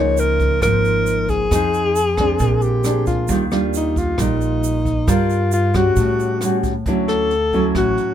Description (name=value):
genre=bossa nova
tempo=135 BPM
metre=4/4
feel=straight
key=unclear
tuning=A4 = 441 Hz
part: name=mellow alto saxophone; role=melody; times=0.0-8.1 s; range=Eb4 to Db5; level=-19 LUFS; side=left 2 dB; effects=none
part: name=nylon-string guitar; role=accompaniment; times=0.0-8.1 s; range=Ab2 to Bb4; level=-21 LUFS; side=right 1 dB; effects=none
part: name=upright bass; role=bass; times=0.0-8.0 s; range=Ab1 to A2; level=-21 LUFS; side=right 1 dB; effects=none
part: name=jazz brush drum kit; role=drums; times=0.2-8.1 s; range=hi-hat, kick drum, rim click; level=-26 LUFS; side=equal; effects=none
part: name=egg shaker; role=percussion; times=0.2-6.9 s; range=none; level=-33 LUFS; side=right 10 dB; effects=none
room=little or no reverb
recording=close, detailed microphones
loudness=-15 LUFS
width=side -10 dB against mid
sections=0.0-6.9 A section; 6.9-8.1 B section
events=none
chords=0.0 Db69; 1.5 Fm7; 2.4 Bb9; 3.3 Ebmaj9; 5.1 Gm7; 6.0 A6; 6.9 Dmaj9